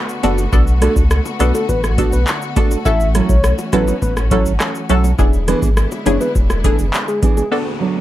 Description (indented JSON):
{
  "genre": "dancehall",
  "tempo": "103 BPM",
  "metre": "4/4",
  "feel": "straight",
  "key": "unclear",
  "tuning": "A4 = 440 Hz",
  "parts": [
    { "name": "warm studio string section", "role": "sustained chords", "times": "0.0-8.0 s", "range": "D3 to F#4", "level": "-26 LUFS", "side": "left 1 dB", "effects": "sidechain pumping" },
    { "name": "booming analog drum machine", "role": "drums", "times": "0.1-7.5 s", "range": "handclaps, hi-hat, kick drum, rim click, shaker", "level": "-17 LUFS", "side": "equal", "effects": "overdrive" },
    { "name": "punchy chord stab", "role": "accompaniment", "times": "0.2-8.0 s", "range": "B3 to A4", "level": "-20 LUFS", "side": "left 2 dB", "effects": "chorus, phaser, sidechain pumping" },
    { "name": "nylon-string guitar", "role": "arpeggios", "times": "0.2-8.0 s", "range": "E3 to A4", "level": "-21 LUFS", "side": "right 6 dB", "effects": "digital delay" },
    { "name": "warm sub bass", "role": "bass", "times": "0.2-6.9 s", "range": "E1 to C#2", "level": "-17 LUFS", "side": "equal", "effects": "none" },
    { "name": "bongos", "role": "percussion", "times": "0.2-7.5 s", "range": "none", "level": "-31 LUFS", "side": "left 5 dB", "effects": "none" },
    { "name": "soft octave-layered synth lead", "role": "melody", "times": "0.8-7.5 s", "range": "G#4 to E5", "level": "-22 LUFS", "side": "left 2 dB", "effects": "chorus, digital delay" },
    { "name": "downlifter", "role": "sound effects", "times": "7.5-8.0 s", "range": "none", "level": "-26 LUFS", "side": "equal", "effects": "none" }
  ],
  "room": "little or no reverb",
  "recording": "none",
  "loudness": "-13 LUFS",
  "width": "side -14 dB against mid",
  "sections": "0.0-7.5 A section",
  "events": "none",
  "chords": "0.0 Bm7; 2.9 A6; 5.2 E7"
}